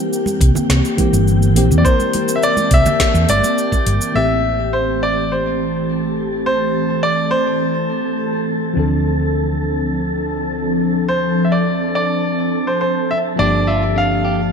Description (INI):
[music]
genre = sunset chillout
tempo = 104 BPM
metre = 4/4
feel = straight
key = unclear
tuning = A4 = 439 Hz
[part]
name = mellow FM electric piano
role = accompaniment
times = 0.0-14.5 s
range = E3 to Bb4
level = -23 LUFS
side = left 2 dB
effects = chorus, auto-pan, low-pass filter, digital delay
[part]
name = ethereal airy pad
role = sustained chords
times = 0.0-14.5 s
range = E3 to A5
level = -21 LUFS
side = equal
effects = ensemble chorus, built-in reverb
[part]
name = wind-like tuned noise texture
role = texture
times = 0.0-14.5 s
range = G4 to A5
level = -29 LUFS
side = right 1 dB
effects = built-in reverb, wide subtle chorus
[part]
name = smooth R&B drum kit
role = drums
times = 0.1-14.5 s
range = cabasa, hi-hat, snare drum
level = -22 LUFS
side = equal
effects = low-pass filter on perc, low-pass filter on hats, low-pass filter on snare, low-pass filter on room, gated reverb
[part]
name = congas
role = percussion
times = 0.3-3.8 s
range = none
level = -25 LUFS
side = right 3 dB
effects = none
[part]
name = hollow-body short-scale fingered electric bass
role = bass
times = 0.4-14.5 s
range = G1 to E2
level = -19 LUFS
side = equal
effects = none
[part]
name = electronic kick drum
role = drums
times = 0.4-3.8 s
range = none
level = -16 LUFS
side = equal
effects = none
[part]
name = bright concert grand piano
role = melody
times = 1.8-14.5 s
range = C5 to F5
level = -18 LUFS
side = equal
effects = digital delay
[part]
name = electric guitar at the edge of break-up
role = arpeggios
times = 13.4-14.4 s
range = D4 to G4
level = -26 LUFS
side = left 2 dB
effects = digital delay
[sound]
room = moderate plate reverb, RT60 1.7 s, digital ambience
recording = bright 1980s-style digital production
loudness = -14 LUFS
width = side -6 dB against mid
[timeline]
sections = 0.0-4.2 A section; 4.2-14.5 B section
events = filter sweep on FM electric piano 0.0-4.2, 4.2-14.5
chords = 0.0 C7; 4.2 Am7; 8.8 Dm7; 13.4 Gm7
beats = 0.12 0.69 1.27 | 1.85 2.42 3.00 3.58 | 4.15 4.73 5.31 5.88 | 6.46 7.04 7.62 8.19 | 8.77 9.35 9.92 10.50 | 11.08 11.65 12.23 12.81 | 13.38 13.96